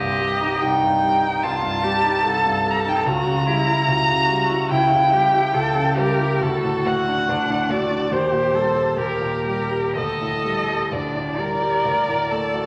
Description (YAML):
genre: classical, slow romantic movement for piano trio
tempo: 58-75 BPM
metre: 4/4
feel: rubato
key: unclear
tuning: A4 = 442 Hz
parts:
  - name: rich violin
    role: melody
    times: 0.0-12.7 s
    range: A4 to Bb5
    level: -23 LUFS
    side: equal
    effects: none
  - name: warm cello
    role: second line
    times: 0.0-12.7 s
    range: D4 to Bb4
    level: -26 LUFS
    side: equal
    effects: none
  - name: clear concert grand piano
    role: accompaniment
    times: 0.0-12.7 s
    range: C2 to G4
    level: -26 LUFS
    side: equal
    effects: none
room: wet recital hall reverb, RT60 1.6 s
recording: none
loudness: -20 LUFS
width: mono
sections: 0.0-12.7 A section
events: none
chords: 0.0 Am7b5/C; 3.1 C#dim7; 6.4 D; 8.1 Eb; 10.0 Dsus4; 11.9 D